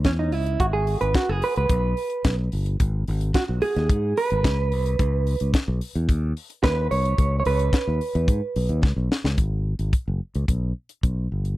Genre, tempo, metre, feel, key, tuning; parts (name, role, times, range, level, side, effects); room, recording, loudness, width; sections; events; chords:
disco; 109 BPM; 4/4; straight; G# minor; A4 = 438 Hz
fingered electric bass; bass; 0.0-11.5 s; F#1 to G#2; -23 LUFS; equal
tight funk drum kit; drums; 0.0-11.6 s; hi-hat, kick drum, snare drum; -23 LUFS; left 1 dB
mellow electric guitar; accompaniment; 0.1-8.8 s; C#4 to C#5; -25 LUFS; right 3 dB; spring reverb
little or no reverb; dry, close 1970s-style studio recording; -21 LUFS; side -17 dB against mid
0.0-9.4 A section; 9.4-11.6 B section
clean electric guitar solo 0.0-9.4; drum fill 8.8-9.4
0.0 C#m; 0.6 G#m; 5.0 C#7(no3); 9.4 G#m